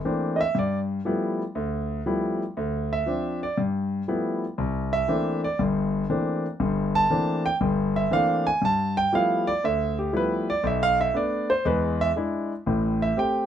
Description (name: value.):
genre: solo jazz.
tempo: 119 BPM.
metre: 4/4.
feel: swing 67% on 8ths.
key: G mixolydian.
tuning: A4 = 441 Hz.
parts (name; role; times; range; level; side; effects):
warm concert grand piano; solo; 0.0-13.5 s; G1 to A5; -22 LUFS; equal; none.
room: light reverb.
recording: dark, warm production.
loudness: -22 LUFS.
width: side -9 dB against mid.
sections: 0.0-13.5 A section.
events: grand piano solo 0.0-13.5.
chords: 0.0 C13; 0.6 G13; 2.6 Dm7; 3.6 G13; 4.6 C13; 8.6 G13; 10.6 Bm7; 11.6 E7; 12.7 Am7.